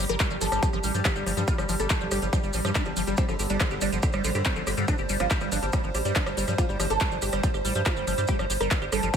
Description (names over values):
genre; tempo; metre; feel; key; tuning
psychedelic trance; 141 BPM; 4/4; straight; unclear; A4 = 440 Hz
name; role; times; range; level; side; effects
oud; melody; 0.0-9.2 s; D3 to Bb4; -31 LUFS; equal; phaser, sidechain pumping, digital delay
evolving wavetable pad; sustained chords; 0.0-9.2 s; G3 to C5; -33 LUFS; right 2 dB; chorus, built-in reverb, sidechain pumping
liquid acid bass; riff; 0.0-9.2 s; F3 to G4; -32 LUFS; moving between left 6 dB and right 7 dB; phaser, auto-pan, sidechain pumping, digital delay
round analog bass; bass; 0.0-9.1 s; G1 to G2; -30 LUFS; equal; none
big-room dance drum kit; drums; 0.1-9.2 s; handclaps, hi-hat, rim click; -32 LUFS; equal; none
maracas; percussion; 0.1-9.2 s; none; -37 LUFS; right 2 dB; none
electronic kick drum; drums; 0.2-9.2 s; none; -27 LUFS; equal; none
room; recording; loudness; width
light reverb; none; -23 LUFS; side -7 dB against mid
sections
0.0-9.2 A section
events
none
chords
0.0 G5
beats
0.20 0.63 1.05 | 1.48 1.90 2.33 2.75 | 3.18 3.60 4.03 4.46 | 4.88 5.31 5.73 6.16 | 6.58 7.01 7.43 7.86 | 8.29 8.71 9.14